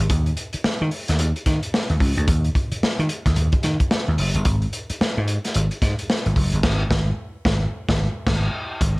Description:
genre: funk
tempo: 110 BPM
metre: 4/4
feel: swing 60% on 16ths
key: unclear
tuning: A4 = 439 Hz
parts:
  - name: vintage slap bass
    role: bass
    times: 0.0-9.0 s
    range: Gb1 to Eb3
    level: -21 LUFS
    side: equal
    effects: none
  - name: crunchy breakbeat drum kit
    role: drums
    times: 0.1-9.0 s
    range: crash cymbal, hi-hat, kick drum, snare drum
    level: -22 LUFS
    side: equal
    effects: none
room: light reverb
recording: none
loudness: -19 LUFS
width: side -25 dB against mid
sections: 0.0-8.8 A section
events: band accent 6.6-8.8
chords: none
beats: | 0.10 0.64 1.19 1.73 | 2.28 2.82 3.37 3.91 | 4.46 5.00 5.54 6.09 | 6.63 7.18 7.72 8.27 | 8.81

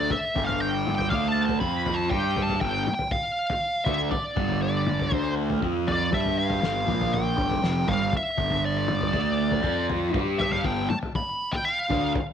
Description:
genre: psychedelic rock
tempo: 120 BPM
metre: 4/4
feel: straight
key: unclear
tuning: A4 = 439 Hz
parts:
  - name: fuzz lead guitar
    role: melody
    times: 0.0-12.1 s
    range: D5 to B5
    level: -27 LUFS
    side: equal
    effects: wah, distortion, slapback echo
  - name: fuzz guitar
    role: riff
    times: 0.0-12.1 s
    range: F2 to G4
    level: -26 LUFS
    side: right 1 dB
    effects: distortion, phaser
  - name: fuzz fingered electric bass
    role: bass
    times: 0.0-12.1 s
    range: F1 to G2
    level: -31 LUFS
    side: equal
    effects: overdrive
  - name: cloth-damped thuddy drum kit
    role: drums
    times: 0.1-12.3 s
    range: kick drum, snare drum, toms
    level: -30 LUFS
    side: left 2 dB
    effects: none
room: light reverb, studio ambience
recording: 1960s-style stereo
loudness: -23 LUFS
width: side -8 dB against mid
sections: 0.0-12.3 A section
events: lead electric guitar solo 0.0-12.3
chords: 0.0 G5; 1.1 D5; 1.6 F5; 2.1 G5; 5.1 D5; 5.6 F5; 6.1 G5; 6.9 Bb5; 7.4 G5; 9.1 D5; 9.6 F5; 10.1 G5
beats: | 0.11 0.61 1.11 1.61 | 2.11 2.61 3.12 3.62 | 4.12 4.62 5.12 5.62 | 6.12 6.62 7.13 7.63 | 8.13 8.63 9.13 9.64 | 10.14 10.64 11.14 11.65 | 12.15

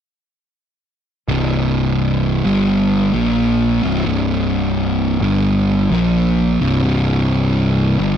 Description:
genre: rock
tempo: 87 BPM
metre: 4/4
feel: swing 67% on 8ths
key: unclear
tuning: A4 = 440 Hz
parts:
  - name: fuzz guitar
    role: riff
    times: 1.3-8.2 s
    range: C2 to Bb3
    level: -15 LUFS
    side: equal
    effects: distortion
  - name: fuzz picked electric bass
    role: bass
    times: 1.3-8.2 s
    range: C1 to Bb1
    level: -20 LUFS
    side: equal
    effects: overdrive
room: light reverb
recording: dry, close 1970s-style studio recording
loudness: -14 LUFS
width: side -9 dB against mid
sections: 1.3-8.2 A section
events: none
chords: 1.3 C5; 2.3 G5; 3.0 Bb5; 3.7 C5; 5.1 G5; 5.8 Bb5; 6.5 C5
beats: | 1.29 1.98 2.67 3.37 | 4.06 4.76 5.45 6.14 | 6.83 7.52

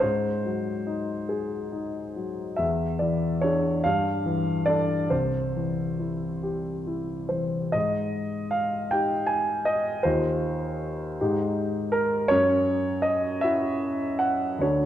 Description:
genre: classical, impressionist solo piano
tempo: 45-54 BPM (dotted quarters)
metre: 6/8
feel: rubato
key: C lydian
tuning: A4 = 441 Hz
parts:
  - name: warm grand piano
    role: solo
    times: 0.0-14.9 s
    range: C2 to Ab5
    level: -24 LUFS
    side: equal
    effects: none
room: wet scoring stage reverb, RT60 1.9 s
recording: none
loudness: -24 LUFS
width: side -11 dB against mid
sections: 0.0-7.7 A section; 7.7-14.9 B section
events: none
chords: 0.0 Ab7; 2.6 E7; 3.8 Gsus2; 5.1 C; 7.7 Ab5; 10.1 Ebsus2; 11.2 Ab5; 12.3 Gb5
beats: | 0.03 1.32 | 2.60 3.85 | 5.12 6.44 | 7.75 8.93 | 10.06 11.20 | 12.31 13.43 | 14.63

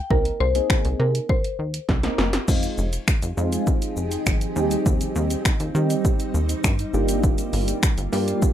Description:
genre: dance-pop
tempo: 101 BPM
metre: 4/4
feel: straight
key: unclear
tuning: A4 = 440 Hz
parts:
  - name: mallet-like synth pluck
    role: melody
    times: 0.0-2.1 s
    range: Bb4 to G5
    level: -25 LUFS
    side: left 2 dB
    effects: chorus
  - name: soft electric-piano-like synth keys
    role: accompaniment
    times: 0.1-8.5 s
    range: G3 to Bb4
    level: -26 LUFS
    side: right 1 dB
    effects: chorus, phaser, sidechain pumping
  - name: plucky analog bass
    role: bass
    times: 0.1-8.3 s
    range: F1 to Eb3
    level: -24 LUFS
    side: equal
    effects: sidechain pumping
  - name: punchy analog drum machine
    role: drums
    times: 0.1-8.5 s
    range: crash cymbal, finger snaps, hi-hat, kick drum, shaker, snare drum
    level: -22 LUFS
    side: equal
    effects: none
  - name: granular cloud pad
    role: sustained chords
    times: 3.3-8.5 s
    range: F3 to Ab4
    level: -30 LUFS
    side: equal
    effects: built-in reverb, sidechain pumping
room: light reverb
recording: rough home demo mix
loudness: -20 LUFS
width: side -11 dB against mid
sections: 0.0-2.5 A section; 2.5-8.5 B section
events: drum fill 1.9-2.5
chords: 0.0 Abadd9; 2.5 Fm7; 4.6 Cm/Eb; 6.9 Gm7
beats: | 0.11 0.70 1.29 1.89 | 2.48 3.08 3.67 4.26 | 4.86 5.45 6.05 6.64 | 7.24 7.83 8.42

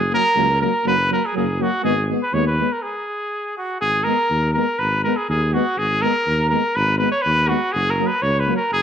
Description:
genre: balkan folk, Balkan brass band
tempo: 122 BPM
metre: 2/4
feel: swing 54% on 16ths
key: G# minor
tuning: A4 = 440 Hz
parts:
  - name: clear trumpet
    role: melody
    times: 0.0-8.8 s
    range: F#4 to C#5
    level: -19 LUFS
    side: equal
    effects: tape echo
  - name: dark tuba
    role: bass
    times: 0.0-8.8 s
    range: F#1 to D#2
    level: -23 LUFS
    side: equal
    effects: none
  - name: dark euphonium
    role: accompaniment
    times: 0.1-8.6 s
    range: F#3 to G#3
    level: -26 LUFS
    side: right 14 dB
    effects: none
  - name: mellow euphonium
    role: accompaniment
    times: 0.1-8.6 s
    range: A#3 to B3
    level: -26 LUFS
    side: left 12 dB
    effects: none
room: wet spring reverb, RT60 1.2 s, studio ambience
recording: 1960s-style stereo with parts hard left and right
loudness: -17 LUFS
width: side -8 dB against mid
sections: 0.0-3.8 A section; 3.8-8.8 A section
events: stop 2.8-3.8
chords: 0.0 F#; 1.9 G#m; 7.7 F#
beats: 0.38 | 0.87 1.36 | 1.85 2.34 | 2.83 3.32 | 3.81 4.30 | 4.79 5.29 | 5.78 6.27 | 6.76 7.25 | 7.74 8.23 | 8.73

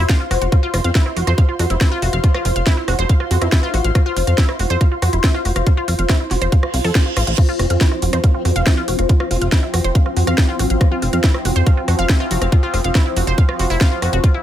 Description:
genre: psychedelic trance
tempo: 140 BPM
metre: 4/4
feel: straight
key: unclear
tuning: A4 = 440 Hz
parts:
  - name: wide unison pluck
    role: riff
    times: 0.0-14.4 s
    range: E4 to F5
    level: -23 LUFS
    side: moving between left 4 dB and right 5 dB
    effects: auto-pan, sidechain pumping, tape echo
  - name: plucky analog bass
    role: bass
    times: 0.0-14.2 s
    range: F1 to F2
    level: -18 LUFS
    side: equal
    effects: none
  - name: ethereal airy pad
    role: texture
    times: 0.0-14.4 s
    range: F4 to C6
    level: -25 LUFS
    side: left 1 dB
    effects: ensemble chorus, built-in reverb, phaser, sidechain pumping
  - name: electronic kick drum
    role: drums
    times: 0.1-14.3 s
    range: none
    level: -14 LUFS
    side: equal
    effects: overdrive, studio reverb
  - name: garage drum kit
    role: drums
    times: 0.1-14.3 s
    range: crash cymbal, hi-hat, rim click, snare drum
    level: -23 LUFS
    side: right 1 dB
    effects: overdrive, studio reverb
  - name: formant-sweep wobble bass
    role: second line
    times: 0.7-3.7, 7.6-9.6 s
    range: F3 to F4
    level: -34 LUFS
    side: left 3 dB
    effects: none
  - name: reverse cymbal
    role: sound effects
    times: 6.7-7.4 s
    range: none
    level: -26 LUFS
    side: right 7 dB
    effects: none
  - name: bubbling stepped-filter texture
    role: sustained chords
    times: 7.7-14.4 s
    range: F3 to F4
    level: -26 LUFS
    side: left 1 dB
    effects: chorus, built-in reverb, vintage 12-bit sampler grit, sidechain pumping
room: digital ambience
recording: none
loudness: -14 LUFS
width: side -11 dB against mid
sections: 0.0-14.4 A section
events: reverse cymbal 6.7-7.4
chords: 0.0 F5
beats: 0.09 | 0.52 0.95 1.38 1.81 | 2.24 2.67 3.09 3.52 | 3.95 4.38 4.81 5.24 | 5.67 6.09 6.52 6.95 | 7.38 7.81 8.24 8.67 | 9.09 9.52 9.95 10.38 | 10.81 11.24 11.67 12.09 | 12.52 12.95 13.38 13.81 | 14.24

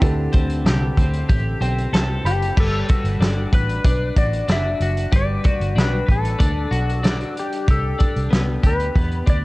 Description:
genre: indie pop, bedroom pop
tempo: 94 BPM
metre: 4/4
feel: straight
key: G major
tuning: A4 = 440 Hz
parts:
  - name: twelve-string electric guitar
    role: accompaniment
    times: 0.0-9.4 s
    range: D3 to B4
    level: -26 LUFS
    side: left 2 dB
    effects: analog chorus, warbly pitch drift
  - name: warm upright piano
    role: accompaniment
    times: 0.0-2.6 s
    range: C4 to B5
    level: -29 LUFS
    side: right 4 dB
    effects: none
  - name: vintage muted fingered electric bass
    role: bass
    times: 0.0-9.4 s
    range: F#1 to E2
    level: -22 LUFS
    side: equal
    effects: none
  - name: loose indie drum kit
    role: drums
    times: 0.0-9.4 s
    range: crash cymbal, hi-hat, kick drum, snare drum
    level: -19 LUFS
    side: equal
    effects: vintage 12-bit sampler grit
  - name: clean lap steel guitar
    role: melody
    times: 2.3-9.4 s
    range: G4 to E5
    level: -26 LUFS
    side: left 2 dB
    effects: analog chorus
room: small room ambience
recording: cassette tape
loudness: -17 LUFS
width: side -21 dB against mid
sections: 0.0-2.6 A section; 2.6-9.4 B section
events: upright piano fill 1.3-2.6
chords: 0.0 D7sus4; 2.6 Gmaj9; 7.7 Cmaj9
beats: | 0.01 0.65 1.29 1.93 | 2.57 3.21 3.84 4.48 | 5.12 5.76 6.40 7.04 | 7.68 8.31 8.95

